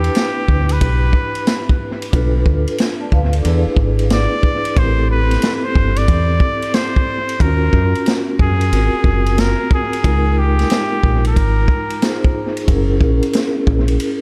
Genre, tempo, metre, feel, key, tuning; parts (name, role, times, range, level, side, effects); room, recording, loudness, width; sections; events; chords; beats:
hip hop, jazz-hop; 91 BPM; 4/4; swing 64% on 16ths; A4 = 440 Hz
trumpet with straight mute; melody; 0.0-12.3 s; G4 to D5; -24 LUFS; equal; analog delay
vibraphone with medium mallets; accompaniment; 0.0-14.2 s; G#3 to A5; -24 LUFS; equal; analog delay
deep dub fingered electric bass; bass; 0.0-14.0 s; F#1 to F#2; -18 LUFS; equal
vintage drum kit; drums; 0.0-14.2 s; hi-hat, kick drum, ride cymbal, snare drum; -20 LUFS; equal; analog delay
studio ambience; echo-heavy mix; -16 LUFS; mono
0.0-14.2 A section
0.0 Em7; 2.1 Bm7b5; 3.4 E7; 4.8 Am7; 7.4 D#m9; 8.7 G#13; 10.0 C#6; 12.7 F#9
0.15 0.81 1.47 | 2.13 2.79 3.45 4.11 | 4.76 5.42 6.08 6.74 | 7.40 8.06 8.72 9.38 | 10.04 10.70 11.36 12.02 | 12.68 13.34 14.00